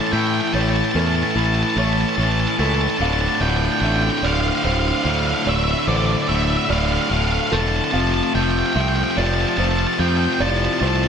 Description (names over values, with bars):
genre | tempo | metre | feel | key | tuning
post-rock | 49 BPM (dotted quarters) | 6/8 | straight | D minor | A4 = 440 Hz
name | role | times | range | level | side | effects
octave-fuzz lead guitar | melody | 0.0-11.1 s | D5 to A5 | -23 LUFS | left 1 dB | distortion, tape echo
pedal steel guitar | sustained chords | 0.0-11.1 s | A3 to D5 | -34 LUFS | left 2 dB | none
felt-muted upright piano | arpeggios | 0.0-11.1 s | A4 to F5 | -30 LUFS | right 5 dB | tape echo
twangy electric guitar | arpeggios | 0.0-11.1 s | D2 to E4 | -30 LUFS | left 1 dB | slapback echo, tape echo
distorted electric guitar | riff | 0.0-11.1 s | D2 to A3 | -24 LUFS | left 12 dB | distortion
tight distorted guitar | riff | 0.0-11.1 s | D2 to A3 | -24 LUFS | right 12 dB | distortion
growling fingered electric bass | bass | 0.1-11.1 s | D1 to A2 | -21 LUFS | equal | overdrive
room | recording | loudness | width
moderate lush hall reverb, RT60 2.0 s | big arena sound | -17 LUFS | side -7 dB against mid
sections
0.0-11.1 A section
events
none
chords
0.0 A; 3.0 Dm; 7.9 F6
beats
| 0.54 1.77 | 3.00 4.23 | 5.46 6.70 | 7.93 9.16 | 10.40